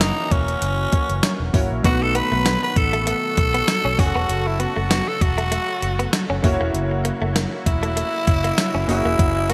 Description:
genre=1980s-style pop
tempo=98 BPM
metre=4/4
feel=swing 55% on 16ths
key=F# dorian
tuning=A4 = 440 Hz
part: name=raspy tenor saxophone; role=melody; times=0.0-9.5 s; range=C#4 to B4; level=-25 LUFS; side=equal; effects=digital delay
part: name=clear grand piano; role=accompaniment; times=0.0-9.5 s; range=B2 to C#5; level=-30 LUFS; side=equal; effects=analog chorus
part: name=sweeping resonant pad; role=sustained chords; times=0.0-9.5 s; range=C#3 to D#5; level=-34 LUFS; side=equal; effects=chorus
part: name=vintage muted fingered electric bass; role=bass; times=0.0-9.5 s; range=E1 to B1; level=-27 LUFS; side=equal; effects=none
part: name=clean 12-bit digital drum machine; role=drums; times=0.0-9.5 s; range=hi-hat, kick drum, snare drum, tambourine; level=-23 LUFS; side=equal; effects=overdrive, gated reverb
part: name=direct-recorded clean electric guitar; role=riff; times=2.0-9.5 s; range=A3 to C#4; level=-32 LUFS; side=equal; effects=subtle chorus
room=light reverb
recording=bright 1980s-style digital production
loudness=-20 LUFS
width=mono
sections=0.0-9.5 A section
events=none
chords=0.0 F#7; 1.8 B7; 4.0 F#m; 6.4 F#7

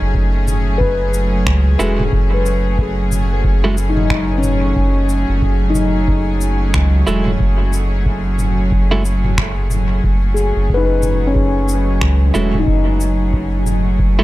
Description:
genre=ambient dub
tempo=91 BPM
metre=4/4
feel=swing 60% on 16ths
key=F# dorian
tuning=A4 = 440 Hz
part: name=rich studio string section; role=sustained chords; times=0.0-14.2 s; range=F#3 to G#4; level=-22 LUFS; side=right 1 dB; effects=none
part: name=handpan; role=arpeggios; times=0.0-14.2 s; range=C#4 to B4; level=-21 LUFS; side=left 3 dB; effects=dub echo
part: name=soft dub sub bass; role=bass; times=0.0-14.2 s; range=E1 to C#2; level=-16 LUFS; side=equal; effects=none
part: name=electronic kick drum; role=drums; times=0.1-14.2 s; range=none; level=-20 LUFS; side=equal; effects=none
part: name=organic electronic drum kit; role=drums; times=0.5-13.8 s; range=cabasa, finger snaps, toms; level=-24 LUFS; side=equal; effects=overdrive, dub echo
part: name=clean electric guitar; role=stabs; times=1.8-14.2 s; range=G#3 to A4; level=-23 LUFS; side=right 3 dB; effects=dub echo
room=light reverb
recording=none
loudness=-13 LUFS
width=side -17 dB against mid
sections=0.0-14.2 A section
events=none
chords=0.0 F#m9

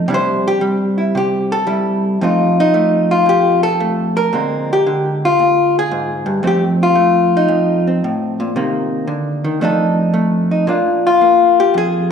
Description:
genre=solo jazz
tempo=113 BPM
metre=4/4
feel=swing 68% on 8ths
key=F mixolydian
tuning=A4 = 440 Hz
part: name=vintage hollow-body jazz guitar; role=solo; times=0.0-12.1 s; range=F2 to C5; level=-13 LUFS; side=left 1 dB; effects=none
room=wet recital hall reverb, RT60 1.8 s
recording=recorded in a church or concert hall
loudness=-13 LUFS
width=side -7 dB against mid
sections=0.0-2.2 A section; 2.2-12.1 B section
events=hollow-body jazz guitar solo 0.0-2.2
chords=0.1 C69; 2.2 F9; 4.3 Bb13; 6.4 F7; 8.5 Cm7; 9.6 F6; 10.7 Bb7

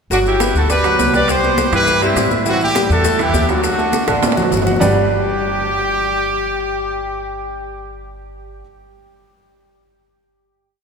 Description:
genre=latin, salsa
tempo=204 BPM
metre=4/4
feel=straight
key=G major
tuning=A4 = 440 Hz
part: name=bright horn section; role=melody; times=0.1-7.9 s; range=C4 to D5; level=-18 LUFS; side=left 1 dB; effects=none
part: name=bright baby grand piano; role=accompaniment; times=0.1-8.6 s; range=D3 to F#5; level=-20 LUFS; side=right 1 dB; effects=none
part: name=upright bass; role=bass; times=0.1-8.6 s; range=G1 to A2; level=-22 LUFS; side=equal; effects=none
part: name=bongos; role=percussion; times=0.1-4.9 s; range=none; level=-28 LUFS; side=left 5 dB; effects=none
part: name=congas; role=percussion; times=0.1-4.9 s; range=none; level=-24 LUFS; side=equal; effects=none
part: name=maracas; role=percussion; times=0.1-4.9 s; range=none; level=-29 LUFS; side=left 7 dB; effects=none
part: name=timbales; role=percussion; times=0.4-4.9 s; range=none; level=-26 LUFS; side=right 5 dB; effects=none
room=wet church reverb, RT60 3.5 s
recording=recorded in a church or concert hall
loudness=-14 LUFS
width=side -5 dB against mid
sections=0.1-4.8 verse; 4.8-7.2 final chord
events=drum fill 4.1-4.8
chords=0.1 Gmaj7; 1.3 Cmaj7; 2.5 A7(no3); 3.6 D; 4.8 Gmaj7

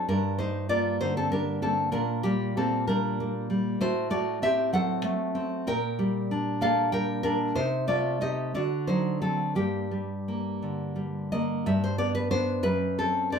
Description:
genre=romantic piece for solo classical guitar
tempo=57-66 BPM (dotted quarters)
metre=6/8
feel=rubato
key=G minor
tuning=A4 = 439 Hz
part: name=nylon-string guitar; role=solo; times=0.0-13.4 s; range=F#2 to G5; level=-25 LUFS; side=equal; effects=none
room=wet studio reverb, RT60 0.5 s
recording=heard from further back in the room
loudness=-25 LUFS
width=side -6 dB against mid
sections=0.0-11.7 A section; 11.7-13.4 B section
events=none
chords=0.1 Gm; 1.9 Gm/Bb; 3.8 F#dim/A; 5.7 Gm/Bb; 7.6 Adim/C; 8.6 D7; 9.6 Gm; 11.7 G; 12.6 D7/F#

